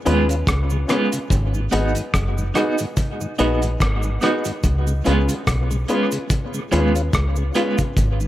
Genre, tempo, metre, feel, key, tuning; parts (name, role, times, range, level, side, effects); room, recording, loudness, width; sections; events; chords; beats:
dub reggae; 72 BPM; 4/4; swing 57% on 16ths; A4 = 438 Hz
clean electric guitar; accompaniment; 0.1-7.8 s; G#3 to F#4; -25 LUFS; right 4 dB; tremolo, dub echo
mellow tonewheel organ; accompaniment; 0.1-8.3 s; G#2 to F#4; -29 LUFS; left 1 dB; slow rotary speaker, dub echo
warm upright piano; stabs; 0.1-7.8 s; C#4 to B4; -25 LUFS; left 3 dB; dub echo
deep dub fingered electric bass; bass; 0.1-8.3 s; F#1 to D#2; -20 LUFS; equal
cloth-damped thuddy drum kit; drums; 0.1-8.2 s; hi-hat, kick drum, rim click; -23 LUFS; equal
cabasa; percussion; 0.1-8.3 s; -37 LUFS; right 7 dB; dub echo
light reverb, small room ambience; -18 LUFS; side -14 dB against mid
0.0-8.3 A section
0.0 C#7; 1.3 G#m7; 4.6 C#7
0.47 | 1.30 2.14 2.97 3.80 | 4.64 5.47 6.30 7.13 | 7.97